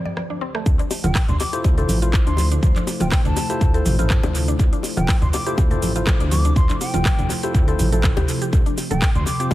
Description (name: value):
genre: afro house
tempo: 122 BPM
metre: 4/4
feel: swing 54% on 16ths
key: D minor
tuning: A4 = 438 Hz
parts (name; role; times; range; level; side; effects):
- ethereal airy pad; sustained chords; 0.0-9.5 s; D2 to C5; -30 LUFS; equal; ensemble chorus, built-in reverb, sidechain pumping
- bright tine electric piano; stabs; 0.0-9.5 s; D3 to C5; -29 LUFS; left 3 dB; medium stereo tremolo, sidechain pumping, tape echo
- mallet-like synth pluck; arpeggios; 0.1-9.5 s; A3 to D5; -30 LUFS; equal; chorus, phaser, sidechain pumping, tape echo
- congas; percussion; 0.1-9.2 s; none; -27 LUFS; right 1 dB; tape echo
- house drum kit; drums; 0.2-9.5 s; cabasa, handclaps, hi-hat, rim click, toms; -27 LUFS; equal; tape echo
- dark detuned saw bass; bass; 0.7-9.5 s; D1 to D2; -22 LUFS; equal; sidechain pumping
- electronic kick drum; drums; 0.7-9.5 s; none; -18 LUFS; equal; none
- bongos; percussion; 0.7-9.5 s; none; -30 LUFS; left 4 dB; none
- mellow hollow silver concert flute; melody; 1.0-9.5 s; G5 to D6; -30 LUFS; left 1 dB; vintage 12-bit sampler grit, tape echo
room: digital ambience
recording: echo-heavy mix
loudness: -17 LUFS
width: side -15 dB against mid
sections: 0.7-9.5 A section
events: drop 0.7-9.5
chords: 0.0 Csus4/D; 0.7 Dm7; 8.5 Csus4/D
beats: 0.17 | 0.66 1.15 1.64 2.14 | 2.63 3.12 3.61 4.10 | 4.59 5.09 5.58 6.07 | 6.56 7.05 7.55 8.04 | 8.53 9.02 9.51